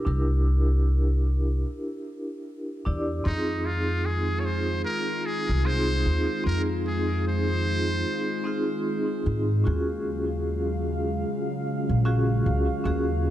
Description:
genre	trip hop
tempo	75 BPM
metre	4/4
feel	swing 58% on 16ths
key	unclear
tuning	A4 = 442 Hz
part	vibraphone with medium mallets	accompaniment	0.0-13.3 s	C4 to D5	-29 LUFS	equal	tremolo, low-pass filter, tape echo
part	upright bass	bass	0.1-13.3 s	Bb1 to Ab2	-25 LUFS	equal	none
part	warbly tape-like pad	sustained chords	3.6-13.3 s	Db3 to F5	-32 LUFS	equal	chorus, built-in reverb
part	trumpet with metal mute	melody	3.3-8.8 s	Eb4 to Db5	-31 LUFS	equal	tape echo
room	light reverb, small room reverb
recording	echo-heavy mix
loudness	-23 LUFS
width	side -12 dB against mid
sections	0.0-13.3 A section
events	none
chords	0.0 C7; 3.3 Fm7; 9.7 Ebm11

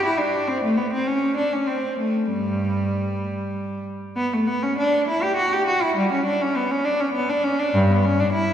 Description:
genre	classical, baroque-style suite movement for unaccompanied cello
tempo	99 BPM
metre	3/4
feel	uneven beats, rubato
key	G major, D major from 4.2 s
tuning	A4 = 440 Hz
part	rich cello	solo	0.0-8.5 s	G2 to G4	-20 LUFS	equal	none
room	wet church reverb, RT60 3.1 s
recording	recorded in a church or concert hall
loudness	-20 LUFS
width	side -9 dB against mid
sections	0.0-4.2 A section; 4.2-8.5 A section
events	none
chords	none

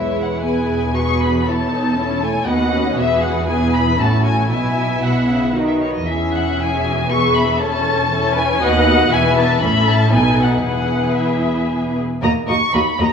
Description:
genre	quick classical-period movement for string orchestra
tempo	117 BPM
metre	3/4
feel	straight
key	E major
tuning	A4 = 440 Hz
part	muted chamber violin section	melody	0.0-13.1 s	C#5 to C#6	-20 LUFS	left 2 dB	none
part	muted chamber violin section	second line	0.0-13.1 s	D#4 to E5	-22 LUFS	left 4 dB	none
part	muted chamber viola section	accompaniment	0.0-13.1 s	G#3 to B4	-20 LUFS	right 1 dB	none
part	muted chamber cello section	bass	0.0-13.1 s	D#2 to D#3	-23 LUFS	right 1 dB	none
part	muted chamber double bass section	bass	0.0-13.1 s	E1 to D#2	-23 LUFS	right 1 dB	none
room	wet scoring stage reverb, RT60 1.9 s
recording	none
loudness	-14 LUFS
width	side -6 dB against mid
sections	0.0-12.2 A section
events	none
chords	0.0 E; 1.5 A/E; 2.5 B/D#; 3.0 E; 4.0 A; 4.5 Bsus4; 5.5 B; 6.1 E; 7.6 A/E; 8.6 B/D#; 9.1 E; 9.6 A; 10.1 B7; 10.7 E; 12.2 Ebm

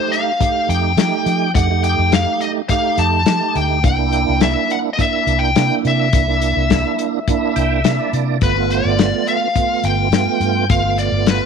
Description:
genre	straight-eighth soul blues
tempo	105 BPM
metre	4/4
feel	straight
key	C mixolydian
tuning	A4 = 440 Hz
part	smooth overdriven lead guitar	melody	0.0-11.5 s	B4 to A5	-19 LUFS	left 3 dB	none
part	tonewheel organ	accompaniment	0.0-11.5 s	A3 to G5	-20 LUFS	right 15 dB	slow rotary speaker, overdrive, chorus vibrato
part	warm soul drum kit	drums	0.1-11.4 s	hi-hat, kick drum, snare drum	-19 LUFS	left 6 dB	none
part	vintage muted fingered electric bass	bass	0.7-11.4 s	G1 to F3	-19 LUFS	left 1 dB	none
room	light reverb, small room ambience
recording	1960s-style stereo with parts hard left and right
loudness	-14 LUFS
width	side -6 dB against mid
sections	0.0-11.5 A section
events	tonewheel organ fill 7.3-8.4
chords	0.0 F9; 3.8 C9; 8.4 G9

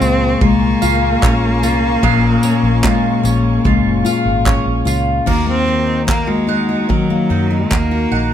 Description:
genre	acoustic pop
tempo	74 BPM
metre	4/4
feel	straight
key	Bb minor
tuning	A4 = 440 Hz
part	clear cello	melody	0.0-8.3 s	Gb3 to C4	-19 LUFS	right 1 dB	none
part	picked steel-string acoustic guitar	accompaniment	0.0-8.3 s	Bb2 to Gb4	-16 LUFS	left 5 dB	none
part	muted studio string section	sustained chords	0.0-5.2 s	F4 to Db6	-27 LUFS	left 3 dB	none
part	mandolin	arpeggios	0.0-8.3 s	Ab3 to Gb5	-23 LUFS	right 9 dB	none
part	vintage muted fingered electric bass	bass	0.0-8.3 s	Gb1 to Bb2	-19 LUFS	right 1 dB	none
part	natural country drum kit	drums	0.0-7.9 s	crash cymbal, handclaps, kick drum, tambourine	-18 LUFS	right 1 dB	none
room	moderate studio reverb, RT60 0.5 s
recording	none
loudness	-12 LUFS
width	side -10 dB against mid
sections	0.0-5.3 A section; 5.3-8.3 B section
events	none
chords	0.0 Bbm7; 5.3 Ebm

